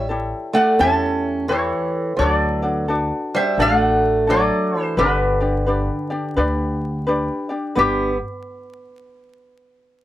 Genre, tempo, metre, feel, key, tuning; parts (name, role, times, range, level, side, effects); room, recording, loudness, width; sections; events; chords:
Hawaiian; 86 BPM; 4/4; swing 62% on 8ths; G major; A4 = 444 Hz
metal-body resonator slide guitar; melody; 0.0-8.2 s; G4 to A5; -20 LUFS; left 1 dB
fingerpicked acoustic archtop guitar; second line; 0.0-8.2 s; D3 to C#4; -23 LUFS; right 2 dB
ukulele; accompaniment; 0.0-8.1 s; D4 to D5; -23 LUFS; left 2 dB
upright bass; bass; 0.0-8.2 s; G1 to E2; -25 LUFS; equal
little or no reverb; dry, gritty hardware recording, vinyl crackle; -17 LUFS; side -14 dB against mid
0.0-7.8 A section; 7.8-10.0 B section
0.0 A7; 2.2 D; 5.0 G